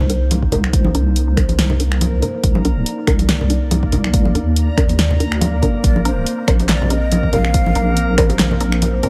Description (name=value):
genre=deep dubstep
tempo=141 BPM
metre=4/4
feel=swing 55% on 16ths, half-time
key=C minor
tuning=A4 = 440 Hz
part: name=dark analog pad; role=sustained chords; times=0.0-9.1 s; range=Bb3 to D5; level=-28 LUFS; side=equal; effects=chorus, phaser
part: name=deep soft wobble bass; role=bass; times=0.0-9.0 s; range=Bb1 to Eb2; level=-20 LUFS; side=equal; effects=chorus
part: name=congas and bongos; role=percussion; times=0.0-9.1 s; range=none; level=-25 LUFS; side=equal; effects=dub echo
part: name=backwards swelling texture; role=texture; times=0.0-9.1 s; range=Bb3 to Bb4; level=-31 LUFS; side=equal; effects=built-in reverb
part: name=filtered dub chord stab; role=stabs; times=0.1-9.1 s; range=C4 to Bb4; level=-26 LUFS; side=equal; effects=phaser, dub echo
part: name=deep house drum kit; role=drums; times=0.1-9.1 s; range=finger snaps, handclaps, hi-hat, snare drum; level=-24 LUFS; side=equal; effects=none
part: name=electronic kick drum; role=drums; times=0.4-8.3 s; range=none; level=-19 LUFS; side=equal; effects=none
part: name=breathy mellow shakuhachi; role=melody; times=5.8-8.1 s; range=C5 to F5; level=-28 LUFS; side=equal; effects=dub echo
room=little or no reverb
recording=none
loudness=-16 LUFS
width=mono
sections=0.0-9.1 A section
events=filter sweep on synth stab 0.0-9.1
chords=0.0 Cm7; 5.8 Bbadd9